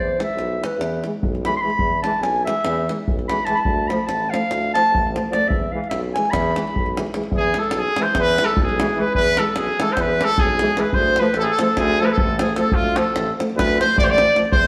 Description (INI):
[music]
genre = balkan folk, Balkan brass band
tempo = 296 BPM (eighths)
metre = 9/8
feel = straight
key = E phrygian dominant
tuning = A4 = 439 Hz
[part]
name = mellow clarinet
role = second line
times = 0.0-14.7 s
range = F4 to C6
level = -26 LUFS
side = equal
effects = none
[part]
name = clear tuba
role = bass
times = 0.0-14.7 s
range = A1 to E2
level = -29 LUFS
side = equal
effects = none
[part]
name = bright trombone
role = accompaniment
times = 0.2-14.4 s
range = E3 to F3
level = -32 LUFS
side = equal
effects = none
[part]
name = mellow euphonium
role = accompaniment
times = 0.2-14.4 s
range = G#3 to A3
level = -30 LUFS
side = equal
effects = none
[part]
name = davul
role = percussion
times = 0.2-14.6 s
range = none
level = -27 LUFS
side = equal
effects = none
[part]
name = warm trumpet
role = melody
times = 7.4-14.7 s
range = F4 to D5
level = -21 LUFS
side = equal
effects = none
[sound]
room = wet stone room reverb, RT60 1.4 s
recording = band playing live in one room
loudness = -20 LUFS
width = mono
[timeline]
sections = 0.0-7.3 A section; 7.3-14.7 B section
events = speeding up 0.0-14.7; clarinet solo 0.0-7.3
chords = 0.0 E; 3.6 Dm; 5.5 E; 10.9 Dm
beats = 0.15 0.36 0.56 0.77 0.97 1.18 1.38 1.59 | 1.80 2.00 2.21 2.41 2.62 2.82 3.03 3.23 3.44 | 3.64 3.85 4.05 4.26 4.46 4.67 4.87 5.08 5.28 | 5.49 5.69 5.89 6.10 6.30 6.50 6.71 6.91 7.11 | 7.32 7.52 7.72 7.92 8.12 8.33 8.53 8.73 8.93 | 9.13 9.33 9.53 9.73 9.94 10.13 10.34 10.54 10.74 | 10.94 11.14 11.34 11.54 11.73 11.94 12.13 12.33 12.53 | 12.73 12.93 13.13 13.33 13.53 13.73 13.93 14.12 14.32 | 14.52